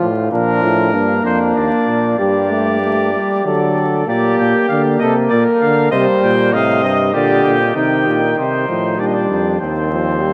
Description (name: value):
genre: classical, imitative canzona for brass ensemble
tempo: 97 BPM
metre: 3/4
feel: straight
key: G minor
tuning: A4 = 440 Hz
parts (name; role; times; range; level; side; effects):
- warm flugelhorn; second line; 0.0-10.3 s; C4 to Eb5; -21 LUFS; equal; none
- warm trombone; accompaniment; 0.0-10.3 s; C3 to Bb3; -20 LUFS; equal; none
- warm euphonium; bass; 0.0-10.3 s; Eb2 to D3; -22 LUFS; equal; none
- warm trumpet; melody; 0.3-10.3 s; Bb4 to G5; -23 LUFS; equal; none
room: wet huge ambient reverb, RT60 8.1 s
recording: in a vast, echoing space, vinyl crackle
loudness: -15 LUFS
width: mono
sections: 0.0-4.1 A section; 4.1-7.8 B section; 7.8-10.3 A section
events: none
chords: 0.3 Bb; 1.6 Eb5; 2.2 Dsus4/G; 3.5 D; 4.1 Gm/Bb; 5.3 Bb; 5.9 Cm; 7.1 Gm/Bb; 7.8 Cm; 9.0 Bb; 9.6 Adim/Eb (rootless)